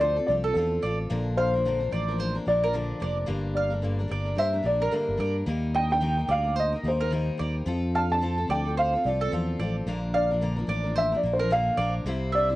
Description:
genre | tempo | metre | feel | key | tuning
acoustic pop | 110 BPM | 4/4 | swing 60% on 16ths | unclear | A4 = 440 Hz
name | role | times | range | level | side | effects
dark upright piano | melody | 0.0-12.6 s | A4 to A5 | -26 LUFS | equal | cassette tape, tape echo
picked steel-string acoustic guitar | accompaniment | 0.0-12.6 s | G2 to C5 | -32 LUFS | left 2 dB | cassette tape
mandolin | arpeggios | 0.0-12.5 s | A4 to F5 | -32 LUFS | right 4 dB | cassette tape
fingered electric bass | bass | 0.0-12.6 s | F1 to G2 | -29 LUFS | equal | none
room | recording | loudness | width
light reverb | home recording on cassette | -24 LUFS | side -16 dB against mid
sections
0.0-12.6 A section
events
none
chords
0.0 F; 1.1 Bb; 3.3 Gm; 5.5 Eb; 7.7 F; 9.9 Bb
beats
0.01 0.55 | 1.10 1.65 2.19 2.74 | 3.29 3.83 4.38 4.93 | 5.48 6.03 6.57 7.12 | 7.67 8.22 8.77 9.32 | 9.87 10.41 10.96 11.51 | 12.06

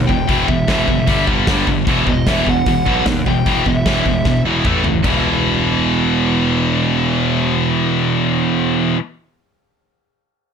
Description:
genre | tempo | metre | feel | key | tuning
heavy metal | 152 BPM | 4/4 | straight | E minor | A4 = 439 Hz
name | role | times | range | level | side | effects
scooped high-gain guitar | riff | 0.0-9.0 s | E2 to A3 | -19 LUFS | left 13 dB | distortion
tight distorted guitar | riff | 0.0-9.0 s | E2 to A3 | -19 LUFS | right 12 dB | distortion
fuzz picked electric bass | bass | 0.0-8.9 s | E1 to D#2 | -21 LUFS | equal | overdrive
smooth overdriven lead guitar | melody | 0.1-4.4 s | D#5 to G5 | -23 LUFS | equal | digital delay
big rock drum kit | drums | 0.1-5.1 s | crash cymbal, hi-hat, kick drum, snare drum, toms | -20 LUFS | left 1 dB | none
room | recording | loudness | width
light reverb | none | -14 LUFS | side -7 dB against mid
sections
0.0-5.0 A section; 5.0-8.2 B section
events
drum fill 4.2-5.0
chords
0.0 Em; 1.1 G5; 1.9 E5; 4.6 A5; 5.0 E5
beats
| 0.29 0.68 1.08 1.47 | 1.87 2.26 2.66 3.06 | 3.45 3.85 4.25 4.64 | 5.04 5.44 5.83 6.23 | 6.62 7.02 7.42 7.81

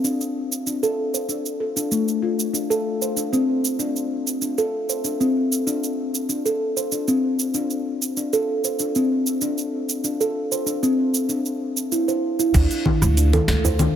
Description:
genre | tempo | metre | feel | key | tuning
organic downtempo | 96 BPM | 4/4 | straight | unclear | A4 = 440 Hz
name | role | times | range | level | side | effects
steel tongue drum | arpeggios | 0.0-13.9 s | A3 to C5 | -21 LUFS | equal | low-pass filter, tape echo
afro-pop drum kit | drums | 0.0-13.9 s | cabasa, congas, crash cymbal, hi-hat, snare drum | -24 LUFS | right 1 dB | none
upright bass | bass | 12.5-13.9 s | D2 | -18 LUFS | equal | none
electronic kick drum | drums | 12.5-13.0 s | none | -22 LUFS | equal | none
djembe | percussion | 12.5-13.8 s | none | -25 LUFS | right 2 dB | none
room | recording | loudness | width
light reverb | none | -20 LUFS | side -9 dB against mid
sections
0.0-12.5 A section; 12.5-14.0 B section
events
none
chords
0.0 D5; 2.5 Csus2; 12.5 N.C.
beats
| 0.04 0.67 1.29 1.92 | 2.54 3.17 3.79 4.42 | 5.04 5.67 6.29 6.92 | 7.54 8.17 8.79 9.42 | 10.04 10.67 11.29 11.92 | 12.54 13.17 13.79

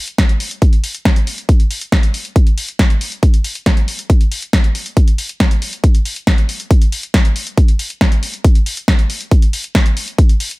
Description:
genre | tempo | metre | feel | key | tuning
trance | 138 BPM | 4/4 | straight | none | none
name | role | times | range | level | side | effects
punchy analog drum machine | drums | 0.1-10.6 s | hi-hat, snare drum | -19 LUFS | equal | sidechain pumping on hats
electronic kick drum | drums | 0.2-10.3 s | none | -11 LUFS | equal | none
room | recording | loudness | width
digital ambience | none | -12 LUFS | side -23 dB against mid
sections
0.0-10.6 A section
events
none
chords
none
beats
0.18 0.62 1.05 | 1.49 1.92 2.36 2.79 | 3.23 3.66 4.10 4.53 | 4.97 5.40 5.84 6.27 | 6.71 7.14 7.58 8.01 | 8.45 8.88 9.31 9.75 | 10.19

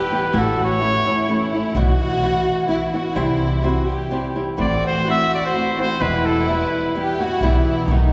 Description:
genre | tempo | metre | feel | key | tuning
mexican folk, mariachi | 128 BPM | 3/4 | swing 54% on 8ths | E minor | A4 = 440 Hz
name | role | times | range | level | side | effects
clear trumpet | melody | 0.0-1.5, 4.6-7.2 s | A4 to E5 | -25 LUFS | equal | none
dark studio violin section | second line | 0.0-8.1 s | D#4 to G4 | -25 LUFS | equal | none
flamenco guitar | accompaniment | 0.0-8.1 s | E2 to F#4 | -25 LUFS | equal | none
upright bass | bass | 0.3-8.1 s | E1 to C2 | -26 LUFS | equal | none
room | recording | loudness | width
wet church reverb, RT60 3.5 s | recorded in a church or concert hall, nothing above 8.0 kHz | -20 LUFS | mono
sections
0.0-8.1 A section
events
none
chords
0.4 A; 1.8 Bsus4; 3.2 C; 4.6 Am; 6.0 Em; 7.4 Em/B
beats
| 0.35 0.82 1.29 | 1.76 2.23 2.69 | 3.17 3.64 4.11 | 4.59 5.07 5.54 | 6.01 6.49 6.96 | 7.42 7.89

